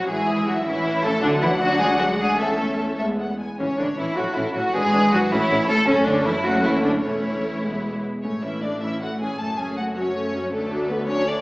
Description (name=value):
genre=quick classical-period movement for string orchestra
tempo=105 BPM (dotted quarters)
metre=6/8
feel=rubato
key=A major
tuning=A4 = 440 Hz
part: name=warm symphonic violin section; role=melody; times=0.0-11.4 s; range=A4 to A5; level=-28 LUFS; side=left 1 dB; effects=none
part: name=rich symphonic violin section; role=second line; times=0.0-11.4 s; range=A3 to A4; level=-23 LUFS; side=equal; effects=none
part: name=warm symphonic viola section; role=accompaniment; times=0.0-11.4 s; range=D3 to E4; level=-25 LUFS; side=equal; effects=none
part: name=rich symphonic cello section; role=bass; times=0.0-11.4 s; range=D2 to A3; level=-28 LUFS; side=equal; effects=none
part: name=rich symphonic double bass section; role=bass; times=0.0-11.4 s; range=E1 to E2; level=-33 LUFS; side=equal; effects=none
room=wet recital hall reverb, RT60 1.4 s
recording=heard from further back in the room, small speaker sound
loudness=-19 LUFS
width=side -21 dB against mid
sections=0.0-8.2 A section; 8.2-11.4 B section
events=none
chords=0.1 E/G#; 0.7 A; 1.2 D; 2.4 A/E; 3.0 E; 3.6 A; 4.7 E7/G#; 5.3 A; 5.9 F#m; 7.0 A/E; 7.6 E; 8.2 A; 9.4 F#m; 10.5 D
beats=| 0.11 0.67 | 1.24 1.80 | 2.39 3.00 | 3.60 4.17 | 4.75 5.31 | 5.87 6.44 | 7.03 7.63 | 8.24 8.82 | 9.39 9.96 | 10.53 11.09